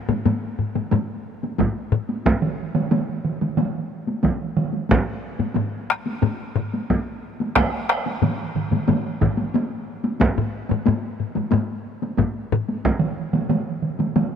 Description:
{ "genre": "japanese traditional, taiko drum ensemble", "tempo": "91 BPM", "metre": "4/4", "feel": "straight", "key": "none", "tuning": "none", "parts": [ { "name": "taiko ensemble", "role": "percussion", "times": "0.1-14.3 s", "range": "none", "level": "-25 LUFS", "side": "left 1 dB", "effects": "none" }, { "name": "taiko ensemble", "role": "percussion", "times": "0.1-12.7 s", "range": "none", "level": "-24 LUFS", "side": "left 4 dB", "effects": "none" }, { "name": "solo taiko drums", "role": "percussion", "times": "1.6-13.0 s", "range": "none", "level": "-23 LUFS", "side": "right 2 dB", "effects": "none" }, { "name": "solo taiko drums", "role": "percussion", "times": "2.4-14.3 s", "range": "none", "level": "-24 LUFS", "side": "right 4 dB", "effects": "none" } ], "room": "light reverb", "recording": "none", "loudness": "-20 LUFS", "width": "side -8 dB against mid", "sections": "0.0-14.4 A section", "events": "none", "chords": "none" }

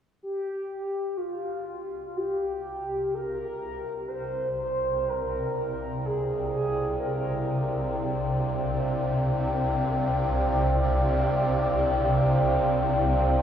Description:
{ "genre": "ambient", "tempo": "free time", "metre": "none", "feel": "none", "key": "unclear", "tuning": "A4 = 439 Hz", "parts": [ { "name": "mellow horn-like synth lead", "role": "melody", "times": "0.2-7.9 s", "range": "F4 to C5", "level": "-30 LUFS", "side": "equal", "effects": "phaser, wide subtle chorus, tape echo" }, { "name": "dark analog pad", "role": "sustained chords", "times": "0.2-13.4 s", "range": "C5 to G5", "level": "-27 LUFS", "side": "left 1 dB", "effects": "chorus" }, { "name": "swarming drone", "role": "drone", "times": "2.5-13.4 s", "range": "C2 to C3", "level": "-27 LUFS", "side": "equal", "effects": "built-in reverb" } ], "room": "wet cathedral reverb, RT60 5.3 s", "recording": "worn, warbling old tape, cassette tape, warbly pitch drift, small room ambience", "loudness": "-24 LUFS", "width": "side -9 dB against mid", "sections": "0.2-13.4 A section", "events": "fade-in on synth drone 0.2-13.4; fade-in on analog synth pad 0.2-13.4", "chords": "0.2 Csus2" }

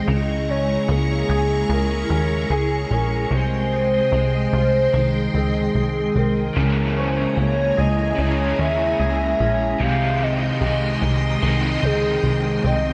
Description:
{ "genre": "dream pop", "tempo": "74 BPM", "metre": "4/4", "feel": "straight", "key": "Ab major", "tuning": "A4 = 440 Hz", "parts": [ { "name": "hollow clarinet-like synth lead", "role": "melody", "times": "0.0-12.9 s", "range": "Ab4 to F5", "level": "-26 LUFS", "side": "equal", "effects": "chorus, delay" }, { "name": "string machine, violins", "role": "sustained chords", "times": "0.0-12.9 s", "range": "Ab3 to Db6", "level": "-28 LUFS", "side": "equal", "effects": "ensemble chorus" }, { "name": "clean electric guitar", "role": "arpeggios", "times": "0.0-12.9 s", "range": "C3 to Ab4", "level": "-28 LUFS", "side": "equal", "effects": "ensemble chorus, delay" }, { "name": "plucky analog bass", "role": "bass", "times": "0.0-12.9 s", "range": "Bb1 to Eb2", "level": "-24 LUFS", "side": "equal", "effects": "none" }, { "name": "crunchy overdriven guitar", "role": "accompaniment", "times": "6.5-12.9 s", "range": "C3 to Ab4", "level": "-30 LUFS", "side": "equal", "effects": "tremolo, analog chorus" } ], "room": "moderate plate reverb, RT60 3.2 s", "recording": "dreamy mix soaked in reverb", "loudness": "-20 LUFS", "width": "mono", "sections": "0.0-12.9 A section", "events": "none", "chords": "0.1 Dbm6; 3.3 Abmaj7/C; 6.6 Dbm6; 9.8 Abmaj7/C" }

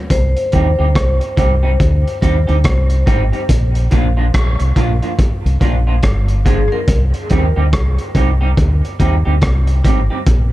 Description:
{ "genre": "dub reggae", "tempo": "71 BPM", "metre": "4/4", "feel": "swing 62% on 16ths", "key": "C minor", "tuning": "A4 = 442 Hz", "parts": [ { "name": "vibraphone with medium hard mallets", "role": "melody", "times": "0.1-6.8 s", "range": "Ab4 to C5", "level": "-24 LUFS", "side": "left 1 dB", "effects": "dub echo" }, { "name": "deep dub fingered electric bass", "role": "bass", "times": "0.1-10.5 s", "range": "G1 to Eb2", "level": "-14 LUFS", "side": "equal", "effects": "none" }, { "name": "crunchy breakbeat drum kit", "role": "drums", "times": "0.1-10.5 s", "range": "hi-hat, kick drum, rim click", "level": "-17 LUFS", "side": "equal", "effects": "none" }, { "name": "electric guitar through a small old amp", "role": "accompaniment", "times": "0.5-10.2 s", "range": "F3 to G4", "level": "-22 LUFS", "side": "right 2 dB", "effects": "lush chorus, dub echo" } ], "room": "small room ambience", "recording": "dark, warm production", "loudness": "-12 LUFS", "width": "side -16 dB against mid", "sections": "0.1-10.5 A section", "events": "none", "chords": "0.1 Cm; 3.5 Bb; 6.9 Cm" }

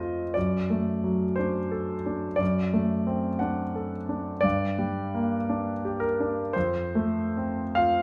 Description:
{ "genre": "classical, romantic nocturne for solo piano", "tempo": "46-60 BPM", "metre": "4/4", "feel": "rubato", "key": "unclear", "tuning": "A4 = 440 Hz", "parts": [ { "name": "clear grand piano", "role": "solo", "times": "0.0-8.0 s", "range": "F2 to F#5", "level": "-27 LUFS", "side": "equal", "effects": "none" } ], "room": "moderate large studio reverb, RT60 0.9 s", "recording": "heard from further back in the room", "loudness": "-27 LUFS", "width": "mono", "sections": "0.0-8.0 A section", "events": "none", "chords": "0.4 D/F#; 4.4 Gm; 6.6 F" }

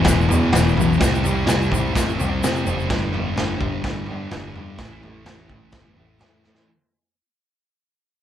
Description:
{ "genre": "garage rock duo or trio", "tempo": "127 BPM", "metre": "4/4", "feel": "straight", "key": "unclear", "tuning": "A4 = 439 Hz", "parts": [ { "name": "thick fuzz guitar", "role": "riff", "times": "0.0-6.7 s", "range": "E2 to C4", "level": "-22 LUFS", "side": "left 1 dB", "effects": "distortion" }, { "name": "picked electric bass", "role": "bass", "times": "0.0-6.7 s", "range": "E1 to C3", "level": "-25 LUFS", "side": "equal", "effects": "none" }, { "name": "raw garage drum kit", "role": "drums", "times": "0.0-6.7 s", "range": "kick drum, snare drum, toms", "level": "-21 LUFS", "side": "equal", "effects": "none" }, { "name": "tube shaker", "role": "percussion", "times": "0.1-2.9 s", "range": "none", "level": "-34 LUFS", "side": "left 5 dB", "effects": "none" } ], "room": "light reverb", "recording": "band playing live in one room", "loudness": "-18 LUFS", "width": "side -10 dB against mid", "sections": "0.0-6.7 A section", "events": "fade-out 0.0-6.7; drum fill 6.4", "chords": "0.0 E5; 1.0 C5; 2.9 G5; 4.8 A5" }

